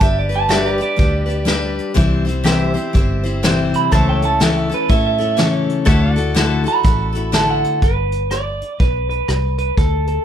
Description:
honky-tonk and classic country; 123 BPM; 4/4; swing 62% on 8ths; G major; A4 = 439 Hz
electric guitar through a small old amp; second line; 0.0-10.2 s; A4 to B5; -20 LUFS; right 4 dB; analog delay
picked steel-string acoustic guitar; accompaniment; 0.0-7.8 s; C3 to C5; -18 LUFS; left 4 dB
vintage muted fingered electric bass; bass; 0.0-10.2 s; G1 to A2; -20 LUFS; equal
vintage brush drum kit; drums; 0.0-10.2 s; hi-hat, kick drum, rim click, snare drum; -18 LUFS; equal
pedal steel guitar; sustained chords; 0.5-7.8 s; G4 to F#5; -26 LUFS; right 2 dB
little or no reverb; -14 LUFS; side -9 dB against mid
0.0-7.8 A section; 7.8-10.2 B section
clean electric guitar solo 0.0-7.8, 7.8-10.2
0.0 G; 2.0 C; 3.9 A/C#; 5.9 Dadd9; 7.8 G

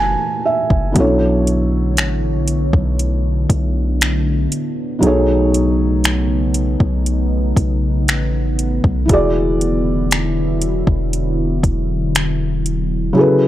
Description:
contemporary R&B; 59 BPM; 4/4; straight; B dorian; A4 = 440 Hz
felt-muted upright piano; accompaniment; 0.0-13.5 s; B2 to A5; -18 LUFS; equal
deep dark ambient pad; sustained chords; 0.0-13.5 s; C#3 to C#5; -22 LUFS; equal; chorus, built-in reverb, sidechain pumping
long sustained 808-style bass; bass; 0.0-13.1 s; E1 to B1; -19 LUFS; equal
smooth R&B drum kit; drums; 0.7-12.9 s; finger snaps, hi-hat, kick drum; -17 LUFS; equal; overdrive
digital ambience; dry, gritty hardware recording; -14 LUFS; side -14 dB against mid
0.0-13.5 A section
felt piano fill 0.0-1.0
0.0 F#m7; 1.0 Bm11; 5.0 B13; 9.1 E9

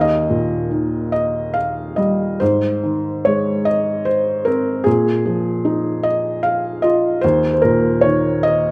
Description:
classical, lyrical solo piano; 46-51 BPM (dotted quarters); 6/8; rubato; Ab major; A4 = 439 Hz
felt-muted upright piano; solo; 0.0-8.7 s; Eb2 to F5; -18 LUFS; equal
moderate recital hall reverb, RT60 1.7 s; -18 LUFS; mono
0.0-8.7 A section
0.0 Eb; 2.4 Ab; 4.9 Bbsus4; 7.2 Eb5

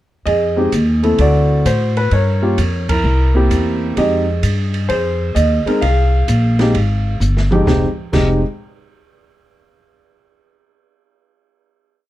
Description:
jazz piano trio; 130 BPM; 4/4; swing 67% on 8ths; F minor; A4 = 435 Hz
warm concert grand piano; melody; 0.3-8.4 s; F2 to F5; -17 LUFS; equal
upright bass; bass; 0.3-8.4 s; F1 to A2; -15 LUFS; equal
open jazz drum kit; drums; 0.3-8.3 s; crash cymbal, hi-hat, kick drum, ride cymbal, snare drum, toms; -25 LUFS; right 2 dB
little or no reverb; dark, warm production; -13 LUFS; side -14 dB against mid
0.3-7.7 A section; 7.7-9.5 final chord
band accent 2.8; drum fill 7.2-7.7
0.3 Fm7; 1.2 D7; 2.1 Gm7b5; 3.0 C7; 4.0 Fm9

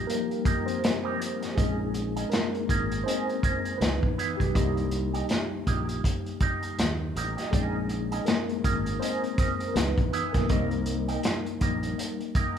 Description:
lush 1970s-style soul; 81 BPM; 4/4; swing 58% on 16ths; A4 = 440 Hz
mellow tine electric piano; accompaniment; 0.0-12.6 s; Fb3 to C5; -30 LUFS; left 3 dB; medium stereo tremolo
fingered electric bass; bass; 0.0-11.9 s; Ab1 to Eb2; -32 LUFS; equal
electric guitar with an envelope filter; riff; 0.1-12.5 s; Bb3 to Bb4; -34 LUFS; right 6 dB; wah, spring reverb
vintage drum kit; drums; 0.1-12.6 s; hi-hat, kick drum, snare drum; -28 LUFS; equal
light reverb; band playing live in one room; -25 LUFS; side -8 dB against mid
0.0-12.6 A section
tine electric piano solo 0.0-12.6
0.0 Cm7; 1.6 Bbm11; 3.8 Dbm7; 4.6 Cm7; 7.5 Bbm11; 9.8 Dbm7; 10.5 Cm7

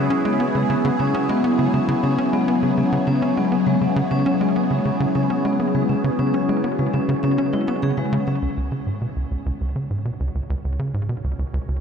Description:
ambient, sequencer-driven space music; 101 BPM; 4/4; straight; C# minor; A4 = 441 Hz
phased analog pad; sustained chords; 0.0-11.8 s; C#3 to Bb4; -22 LUFS; left 1 dB; phaser, chorus
tight sequencer bass; riff; 0.0-11.8 s; Db2 to C#4; -23 LUFS; right 1 dB; tape echo
wind-like tuned noise texture; texture; 0.0-11.8 s; C#4 to C#5; -31 LUFS; right 1 dB; built-in reverb
vibraphone with medium mallets; arpeggios; 0.1-8.4 s; G#3 to G#4; -25 LUFS; left 3 dB; auto-pan, low-pass filter, tape echo
wet huge ambient reverb, RT60 7.7 s; cassette tape; -18 LUFS; side -7 dB against mid
0.0-8.4 A section; 8.4-11.8 B section
0.0 C#m; 8.4 Dbsus4

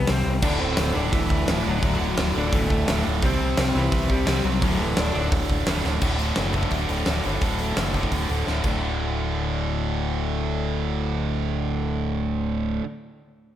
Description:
punk rock; 172 BPM; 4/4; straight; D mixolydian; A4 = 440 Hz
smooth overdriven lead guitar; melody; 0.0-5.3 s; E3 to D5; -28 LUFS; left 1 dB
crunchy overdriven guitar; riff; 0.0-12.8 s; D2 to C4; -28 LUFS; left 7 dB
fingered electric bass; bass; 0.0-12.8 s; D1 to C2; -27 LUFS; equal
big rock drum kit; drums; 0.1-8.7 s; crash cymbal, hi-hat, kick drum, snare drum; -26 LUFS; equal
tight distorted guitar; riff; 0.4-12.9 s; D2 to C4; -28 LUFS; right 7 dB; distortion
light reverb; -21 LUFS; side -11 dB against mid
0.0-6.0 A section; 6.0-8.8 B section; 8.8-11.6 C section
drum fill 5.8, 8.5-8.8
0.4 D; 3.2 C; 4.6 D; 8.6 D5

